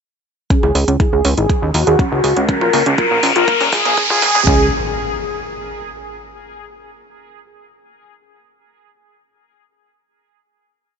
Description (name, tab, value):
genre	melodic techno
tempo	121 BPM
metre	4/4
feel	straight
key	unclear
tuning	A4 = 440 Hz
part	mellow synth brass	melody	0.5-4.7 s	F#4 to A#4	-19 LUFS	left 1 dB	chorus, sidechain pumping, ping-pong delay
part	woody wave-folded pluck	arpeggios	0.5-4.7 s	A#3 to G#4	-21 LUFS	right 3 dB	chorus, sidechain pumping, dub echo
part	electronic hi-hat and congas	drums	0.5-4.4 s	none	-23 LUFS	right 6 dB	high-pass filter on hats, small room ambience, high-pass filter on perc
part	electronic kick drum	drums	0.5-4.6 s	none	-16 LUFS	equal	small room ambience
part	riser and impact	sound effects	1.6-6.5 s	none	-19 LUFS	left 1 dB	none
part	plucky analog bass	bass	0.6-4.7 s	E#1 to D#2	-18 LUFS	equal	sidechain pumping
room	light reverb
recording	high-pass filter, nothing above 7.8 kHz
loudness	-12 LUFS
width	side -6 dB against mid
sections	0.5-4.5 build; 4.5-6.5 final chord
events	build-up 0.5-4.5; filter sweep on synth pluck 0.5-4.5; filter sweep on analog polysynth 0.5-4.5; filter sweep 0.5-4.5; riser 1.6-4.5; drum fill 2.5-4.5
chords	0.5 C#5; 2.5 A#m; 4.5 C#5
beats	| 0.51 1.00 1.50 1.99 | 2.49 2.98 3.48 3.98 | 4.47 4.97 5.46 5.96